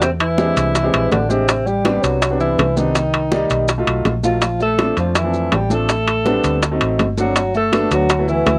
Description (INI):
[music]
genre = Afro-Cuban jazz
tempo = 163 BPM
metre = 4/4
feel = straight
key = unclear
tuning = A4 = 443 Hz
[part]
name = breathy alto saxophone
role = melody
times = 0.0-8.6 s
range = B#3 to A4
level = -23 LUFS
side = equal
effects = cassette tape, plate reverb
[part]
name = mellow bass clarinet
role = second line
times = 0.0-8.6 s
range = B#2 to A3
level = -25 LUFS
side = equal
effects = cassette tape, plate reverb
[part]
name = clear upright piano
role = accompaniment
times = 0.0-8.5 s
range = F3 to D5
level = -24 LUFS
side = equal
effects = cassette tape, plate reverb
[part]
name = vintage muted fingered electric bass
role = bass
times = 0.0-8.6 s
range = G1 to F2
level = -24 LUFS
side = equal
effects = none
[part]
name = bongos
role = percussion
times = 0.0-8.6 s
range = none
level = -25 LUFS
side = equal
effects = none
[part]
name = congas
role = percussion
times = 0.0-8.6 s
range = none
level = -28 LUFS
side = equal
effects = none
[part]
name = maracas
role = percussion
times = 0.0-8.6 s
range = none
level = -34 LUFS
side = equal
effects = none
[part]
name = timbales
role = percussion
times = 0.0-8.6 s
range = none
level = -23 LUFS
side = equal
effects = none
[sound]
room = wet booth ambience, RT60 0.2 s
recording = home recording on cassette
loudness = -17 LUFS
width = mono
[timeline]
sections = 0.0-8.6 A section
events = none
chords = 0.0 E7alt; 1.5 Am11; 3.0 Cm9; 3.7 B7#11; 4.4 Bbmaj9; 5.9 Am11; 6.6 D7b9; 7.4 Gmaj9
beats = | 0.02 0.38 0.75 1.12 | 1.49 1.85 2.22 2.59 | 2.95 3.32 3.69 4.06 | 4.42 4.79 5.16 5.53 | 5.89 6.26 6.63 7.00 | 7.36 7.73 8.10 8.46